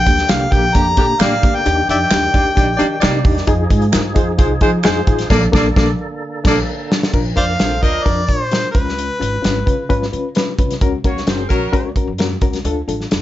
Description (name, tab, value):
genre	uptempo 1960s-style soul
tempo	131 BPM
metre	4/4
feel	straight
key	Bb major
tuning	A4 = 440 Hz
part	warm harmonica	melody	0.0-3.2, 7.4-10.1 s	Cb5 to Bb5	-18 LUFS	left 2 dB	slapback echo, plate reverb
part	percussive tonewheel organ	sustained chords	0.0-7.1 s	D3 to A4	-27 LUFS	right 2 dB	slow rotary speaker, overdrive, chorus vibrato
part	reed electric piano	accompaniment	0.1-13.2 s	Bb3 to Cb5	-20 LUFS	left 2 dB	fast tremolo
part	upright bass	bass	0.1-13.2 s	F1 to F3	-21 LUFS	right 1 dB	none
part	natural country drum kit	drums	0.1-13.2 s	crash cymbal, hi-hat, kick drum, snare drum	-16 LUFS	equal	none
part	finger snap	percussion	0.3-5.0 s	none	-24 LUFS	right 8 dB	none
part	warm horn section	second line	0.5-8.3, 11.0-11.9 s	D3 to D5	-22 LUFS	right 2 dB	none
room	light reverb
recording	nothing above 7.6 kHz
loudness	-13 LUFS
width	side -13 dB against mid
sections	0.0-7.1 A section; 7.1-13.2 B section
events	band accent 5.3-7.1; drum fill 6.2-7.1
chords	0.0 Bb6; 1.7 Ebmaj7; 3.5 Fm7; 5.3 Bbmaj7; 7.1 Bb; 8.7 Db7; 10.8 Gb; 12.7 Dm